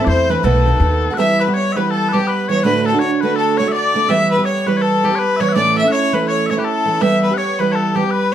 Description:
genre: celtic folk, Celtic hornpipe.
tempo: 164 BPM.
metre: 4/4.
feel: swing 61% on 8ths.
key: E dorian.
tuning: A4 = 440 Hz.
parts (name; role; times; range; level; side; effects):
rich fiddle; melody; 0.0-8.3 s; G4 to E5; -18 LUFS; left 2 dB; none.
mellow small bagpipes; second line; 0.0-8.3 s; G4 to F#5; -22 LUFS; left 6 dB; none.
picked twelve-string acoustic guitar; accompaniment; 0.0-8.3 s; D2 to G4; -17 LUFS; right 4 dB; none.
upright bass; bass; 0.1-1.1 s; B1 to E2; -16 LUFS; left 1 dB; none.
room: moderate studio reverb, RT60 0.6 s.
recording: none.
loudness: -14 LUFS.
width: side -10 dB against mid.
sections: 0.0-1.2 A section; 1.2-8.3 B section.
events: none.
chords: 0.4 B7; 1.2 Em; 2.6 D; 4.1 Em; 5.5 A; 7.0 Em.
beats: 0.07 0.43 0.80 | 1.17 1.53 1.90 2.26 | 2.63 2.99 3.36 3.72 | 4.09 4.45 4.82 5.18 | 5.55 5.92 6.28 6.65 | 7.01 7.38 7.74 8.11.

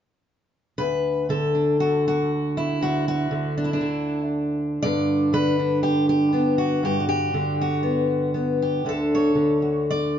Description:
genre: folk, solo fingerstyle acoustic guitar.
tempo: 119 BPM.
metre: 4/4.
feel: straight.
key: unclear.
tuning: A4 = 442 Hz.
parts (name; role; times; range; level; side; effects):
fingerpicked steel-string acoustic guitar; solo; 0.8-10.2 s; D2 to D5; -20 LUFS; equal; none.
room: wet studio reverb, RT60 0.8 s.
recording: band playing live in one room, nothing above 7.5 kHz.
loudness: -20 LUFS.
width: side -9 dB against mid.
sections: 0.8-10.2 A section.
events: none.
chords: 0.8 N.C.; 4.8 Gmaj7; 8.9 D.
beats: | 0.78 1.29 1.80 2.31 | 2.81 3.32 3.82 4.32 | 4.82 5.33 5.83 6.33 | 6.83 7.33 7.84 8.35 | 8.86 9.37 9.88.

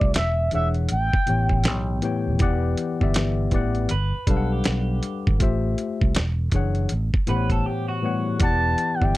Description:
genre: R&B, neo-soul.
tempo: 80 BPM.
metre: 4/4.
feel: swing 61% on 16ths.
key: E dorian.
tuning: A4 = 440 Hz.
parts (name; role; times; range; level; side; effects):
expressive synth lead; melody; 0.0-2.0, 8.4-9.2 s; E5 to A5; -25 LUFS; right 1 dB; chorus.
tine electric piano; accompaniment; 0.0-9.2 s; A2 to G5; -26 LUFS; left 4 dB; overdrive.
fingered electric bass; bass; 0.0-9.2 s; D#1 to C2; -24 LUFS; right 1 dB; none.
dusty soul sampler-style drum kit; drums; 0.0-9.2 s; hi-hat, kick drum, snare drum; -22 LUFS; right 1 dB; none.
electric guitar through a small old amp; second line; 3.9-8.4 s; F#4 to B4; -31 LUFS; right 4 dB; lush chorus.
room: little or no reverb.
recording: dry, close 1970s-style studio recording.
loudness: -20 LUFS.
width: side -17 dB against mid.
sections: 0.0-9.2 A section.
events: break 7.7-8.4.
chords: 0.1 E13; 0.9 A9; 2.4 Em9; 3.9 Gmaj9; 5.4 Fmaj7/A; 6.2 E13; 6.9 A13; 8.4 Em9.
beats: 0.15 0.90 1.65 | 2.40 3.15 3.90 4.65 | 5.40 6.15 6.90 7.65 | 8.40 9.15.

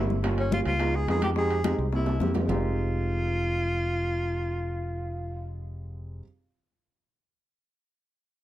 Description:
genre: Afro-Cuban jazz.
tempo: 213 BPM.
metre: 4/4.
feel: straight.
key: F minor.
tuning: A4 = 437 Hz.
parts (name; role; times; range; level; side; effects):
breathy alto saxophone; melody; 0.0-5.5 s; Db4 to Ab4; -30 LUFS; equal; plate reverb, tape echo.
warm concert grand piano; accompaniment; 0.0-6.2 s; G3 to G4; -32 LUFS; right 2 dB; none.
fingered electric bass; bass; 0.0-6.2 s; F1 to F2; -29 LUFS; equal; none.
bongos; percussion; 0.1-2.6 s; none; -36 LUFS; left 5 dB; none.
congas; percussion; 0.1-2.6 s; none; -32 LUFS; left 4 dB; none.
timbales; percussion; 0.2-2.6 s; none; -37 LUFS; right 4 dB; none.
room: moderate studio reverb, RT60 0.5 s.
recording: dark, warm production.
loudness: -25 LUFS.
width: side -14 dB against mid.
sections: 0.0-2.5 A section; 2.5-4.7 B section.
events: drum fill 1.9-2.5.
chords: 0.2 Gm7b5; 0.8 Db7; 1.4 Fm7; 1.9 C7; 2.5 Fm7.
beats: | 0.24 0.52 0.80 1.08 | 1.37 1.65 1.93 2.21 | 2.49 2.78 3.06 3.34 | 3.62 3.90 4.18 4.47.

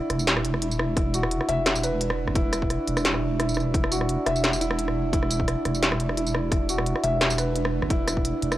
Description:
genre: half-time drum and bass.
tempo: 173 BPM.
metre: 4/4.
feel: swing 54% on 16ths, half-time.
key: unclear.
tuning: A4 = 441 Hz.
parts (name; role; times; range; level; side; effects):
deep dark ambient pad; sustained chords; 0.0-8.6 s; D4; -33 LUFS; right 6 dB; chorus, built-in reverb, sidechain pumping.
felt-muted upright piano; arpeggios; 0.0-8.6 s; E4 to E5; -28 LUFS; equal; analog delay.
deep soft wobble bass; bass; 0.1-8.6 s; E1 to G1; -28 LUFS; equal; chorus.
industrial drum kit; drums; 0.1-8.6 s; hi-hat, rim click, snare drum, tambourine; -26 LUFS; equal; small room reverb.
electronic kick drum; drums; 1.0-8.2 s; none; -26 LUFS; equal; overdrive, small room reverb.
room: little or no reverb.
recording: dry, gritty hardware recording, cassette tape.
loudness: -22 LUFS.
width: side -14 dB against mid.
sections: 0.0-8.6 A section.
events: none.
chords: 0.0 E5.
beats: 0.27 0.62 | 0.97 1.31 1.66 2.01 | 2.35 2.70 3.05 3.40 | 3.74 4.09 4.44 4.78 | 5.13 5.48 5.82 6.17 | 6.52 6.86 7.21 7.56 | 7.90 8.25.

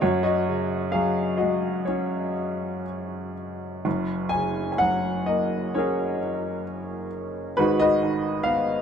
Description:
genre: classical, lyrical solo piano.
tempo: 60-68 BPM.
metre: 4/4.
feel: rubato.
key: F# major.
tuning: A4 = 437 Hz.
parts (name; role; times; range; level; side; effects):
warm grand piano; solo; 0.0-8.8 s; F#1 to G#5; -23 LUFS; equal; none.
room: light reverb.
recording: none.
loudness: -23 LUFS.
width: side -7 dB against mid.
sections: 0.0-3.9 A section; 3.9-8.8 A section.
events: none.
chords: 0.0 F#sus2; 3.9 F#add9; 7.6 G#m7.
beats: | 0.02 0.93 1.87 2.86 | 3.85 4.82 5.75 6.67 | 7.57 8.46.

